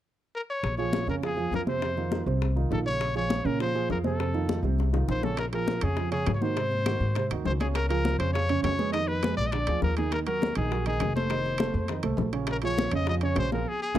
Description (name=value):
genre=latin, salsa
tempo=202 BPM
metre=4/4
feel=straight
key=Bb minor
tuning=A4 = 440 Hz
part: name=bright trumpet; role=melody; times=0.4-14.0 s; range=Ab4 to Eb5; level=-31 LUFS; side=left 2 dB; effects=none
part: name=upright bass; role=bass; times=0.6-14.0 s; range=F1 to Bb2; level=-29 LUFS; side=left 1 dB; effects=none
part: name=bongos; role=percussion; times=0.6-14.0 s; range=none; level=-36 LUFS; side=left 9 dB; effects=none
part: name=congas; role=percussion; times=0.6-14.0 s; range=none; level=-35 LUFS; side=left 2 dB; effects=none
part: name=dark concert grand piano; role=accompaniment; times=0.8-14.0 s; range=C3 to Eb5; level=-31 LUFS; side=right 7 dB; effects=none
part: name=timbales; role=percussion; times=5.4-14.0 s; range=none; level=-38 LUFS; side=right 6 dB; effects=none
room=studio reverb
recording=dry, close 1970s-style studio recording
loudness=-25 LUFS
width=side -12 dB against mid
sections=0.6-5.4 A section; 5.4-14.0 B section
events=drum fill 4.8-5.4; band accent 13.7-14.0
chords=0.0 N.C.; 0.6 Bbm7; 1.8 F5; 3.0 Bbm7; 4.2 F7; 5.4 Bbm7; 6.6 Ab7; 7.8 Db; 8.9 Fm7b5; 9.5 Bb7; 10.1 Ebm; 11.3 F7; 12.5 Bbm7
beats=0.04 0.33 | 0.63 0.93 1.22 1.52 | 1.82 2.12 2.41 2.71 | 3.01 3.30 3.60 3.90 | 4.19 4.49 4.79 5.08 | 5.38 5.68 5.97 6.27 | 6.57 6.87 7.16 7.46 | 7.75 8.05 8.35 8.64 | 8.94 9.23 9.53 9.82 | 10.12 10.41 10.71 11.00 | 11.30 11.59 11.89 12.18 | 12.48 12.77 13.07 13.36 | 13.66 13.95